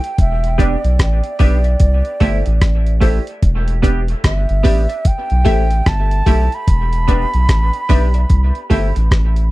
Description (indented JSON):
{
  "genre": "dub reggae",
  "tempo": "74 BPM",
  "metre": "4/4",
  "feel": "swing 62% on 16ths",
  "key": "E minor",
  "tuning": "A4 = 440 Hz",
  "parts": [
    { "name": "breathy mellow concert flute", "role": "melody", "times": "0.0-9.0 s", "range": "D5 to B5", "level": "-23 LUFS", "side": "right 2 dB", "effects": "dub echo" },
    { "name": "dusty soul sampler-style drum kit", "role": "drums", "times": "0.0-9.5 s", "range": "hi-hat, kick drum, rim click", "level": "-15 LUFS", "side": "equal", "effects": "none" },
    { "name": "soft dub sub bass", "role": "bass", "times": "0.2-9.5 s", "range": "E1 to C2", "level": "-15 LUFS", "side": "equal", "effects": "none" },
    { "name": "semi-hollow electric guitar", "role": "accompaniment", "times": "0.6-9.0 s", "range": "A3 to G4", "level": "-23 LUFS", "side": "right 4 dB", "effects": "lush chorus, dub echo" },
    { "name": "filtered dub chord stab", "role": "stabs", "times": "0.6-8.9 s", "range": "G4 to E5", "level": "-26 LUFS", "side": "left 5 dB", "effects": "phaser, dub echo" }
  ],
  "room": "little or no reverb",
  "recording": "dry, close 1970s-style studio recording",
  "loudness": "-13 LUFS",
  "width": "side -18 dB against mid",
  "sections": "0.0-9.5 A section",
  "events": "none",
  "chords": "0.2 Em7; 1.8 C6; 3.4 Em7; 5.1 C6; 6.7 Em7; 8.3 C6",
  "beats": "| 0.18 0.99 1.81 2.62 | 3.43 4.24 5.05 5.86 | 6.67 7.49 8.30 9.11"
}